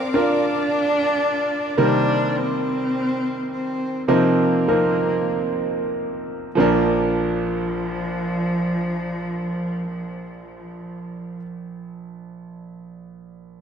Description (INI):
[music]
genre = pop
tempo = 46-56 BPM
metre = 4/4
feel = straight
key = Bb major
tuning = A4 = 438 Hz
[part]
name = dark cello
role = melody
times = 0.0-11.4 s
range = F3 to D4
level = -25 LUFS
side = left 1 dB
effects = none
[part]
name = clear concert grand piano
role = accompaniment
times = 0.0-13.6 s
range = Bb1 to Bb4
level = -22 LUFS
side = right 1 dB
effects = none
[part]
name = warm studio string section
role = sustained chords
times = 0.0-1.7 s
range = Bb4 to D6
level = -32 LUFS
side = left 2 dB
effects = none
[sound]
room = moderate lush hall reverb, RT60 2.9 s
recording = rough home demo mix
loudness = -19 LUFS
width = side -7 dB against mid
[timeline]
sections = 0.0-6.6 A section; 6.6-11.8 B section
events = slowing down 0.0-6.6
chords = 0.0 Bb; 1.8 Cm7; 4.1 F7sus4; 6.6 Bb